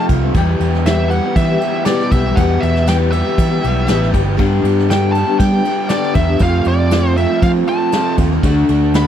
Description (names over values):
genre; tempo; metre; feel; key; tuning
folk rock and heartland rock; 119 BPM; 4/4; straight; unclear; A4 = 440 Hz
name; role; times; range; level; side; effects
nasal lead guitar with a parked wah; melody; 0.0-9.1 s; D5 to B5; -20 LUFS; equal; overdrive
picked steel-string acoustic guitar; accompaniment; 0.0-9.1 s; E2 to G4; -20 LUFS; left 7 dB; none
crunchy overdriven guitar; riff; 0.0-9.1 s; E2 to G4; -19 LUFS; right 3 dB; none
fingered electric bass; bass; 0.1-9.1 s; G1 to G3; -16 LUFS; equal; none
soft brush drum kit; drums; 0.1-9.1 s; crash cymbal, kick drum, ride cymbal, snare drum; -20 LUFS; equal; none
room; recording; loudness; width
little or no reverb; dry, close 1970s-style studio recording; -12 LUFS; side -9 dB against mid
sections
0.0-9.1 A section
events
none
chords
0.3 Em; 4.4 G; 6.4 F; 8.4 D